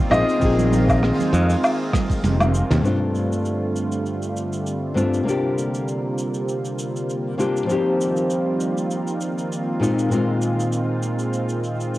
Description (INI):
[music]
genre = sunset chillout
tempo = 99 BPM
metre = 4/4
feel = swing 54% on 16ths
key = G phrygian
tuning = A4 = 440 Hz
[part]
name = nylon-string guitar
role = accompaniment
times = 0.0-12.0 s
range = G2 to Ab4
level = -22 LUFS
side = left 1 dB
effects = auto-pan, tape echo
[part]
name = lush unison pad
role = sustained chords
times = 0.0-12.0 s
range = D3 to F4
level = -26 LUFS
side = equal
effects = chorus
[part]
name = warm grand piano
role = melody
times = 0.1-2.2 s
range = Eb5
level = -26 LUFS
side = equal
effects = cassette tape, analog delay
[part]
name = modern bright fingered electric bass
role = bass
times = 0.1-2.8 s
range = F1 to F2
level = -19 LUFS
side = equal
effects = none
[part]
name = jazz brush drum kit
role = drums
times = 0.1-12.0 s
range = cabasa, hi-hat, rim click, toms, woodblock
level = -26 LUFS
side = equal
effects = cassette tape
[part]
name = electronic kick drum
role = drums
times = 0.4-2.2 s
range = none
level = -21 LUFS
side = equal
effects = cassette tape
[part]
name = congas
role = percussion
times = 0.6-2.1 s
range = none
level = -28 LUFS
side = right 7 dB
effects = none
[sound]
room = moderate spring reverb, RT60 2.6 s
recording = home recording on cassette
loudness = -19 LUFS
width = side -16 dB against mid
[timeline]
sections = 0.0-2.8 A section; 2.8-12.0 B section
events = kick drops out 2.2-2.8; drum fill 2.2-2.8; filter sweep on analog synth pad 2.8-12.0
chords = 0.1 Bb9sus4; 2.8 G9sus4; 5.3 C9sus4; 7.7 F9sus4; 9.8 Bb9sus4